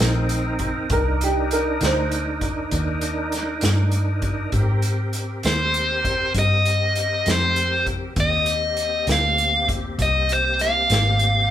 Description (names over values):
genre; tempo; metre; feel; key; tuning
slow blues; 66 BPM (dotted quarters); 12/8; straight; unclear; A4 = 440 Hz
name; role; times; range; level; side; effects
warm upright piano; second line; 0.0-3.6 s; G4 to C5; -23 LUFS; right 2 dB; none
bright tonewheel organ; sustained chords; 0.0-11.5 s; Bb3 to Bb4; -28 LUFS; right 1 dB; chorus vibrato, slow rotary speaker
vintage muted fingered electric bass; bass; 0.0-11.5 s; Ab1 to Ab2; -23 LUFS; equal; none
vintage drum kit; drums; 0.0-11.3 s; hi-hat, kick drum, snare drum; -26 LUFS; equal; none
overdriven electric guitar; melody; 5.5-11.5 s; C5 to F5; -20 LUFS; left 1 dB; none
room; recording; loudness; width
moderate large studio reverb, RT60 0.9 s; band playing live in one room; -18 LUFS; side -11 dB against mid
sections
0.0-11.5 A section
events
none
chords
0.0 Cm7; 4.5 Abmaj7